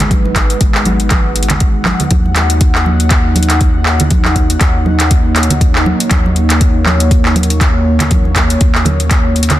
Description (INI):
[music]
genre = afro house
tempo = 120 BPM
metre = 4/4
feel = swing 57% on 16ths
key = Eb minor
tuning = A4 = 441 Hz
[part]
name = dark analog pad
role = sustained chords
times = 0.0-9.6 s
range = Ab3 to Gb5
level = -17 LUFS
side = equal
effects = chorus, sidechain pumping
[part]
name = round analog bass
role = bass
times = 0.0-9.6 s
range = Ab1 to Eb2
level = -15 LUFS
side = equal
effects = sidechain pumping
[part]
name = deep house drum kit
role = drums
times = 0.0-9.6 s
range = handclaps, hi-hat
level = -16 LUFS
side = equal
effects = overdrive
[part]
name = congas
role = percussion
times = 0.0-9.6 s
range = none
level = -18 LUFS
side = right 2 dB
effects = none
[part]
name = electronic kick drum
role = drums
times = 0.1-9.2 s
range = none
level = -12 LUFS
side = equal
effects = none
[sound]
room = digital ambience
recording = dense, heavily limited modern master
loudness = -9 LUFS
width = side -14 dB against mid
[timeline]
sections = 0.0-9.6 A section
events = none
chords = 0.0 Abm7; 2.1 Ebm7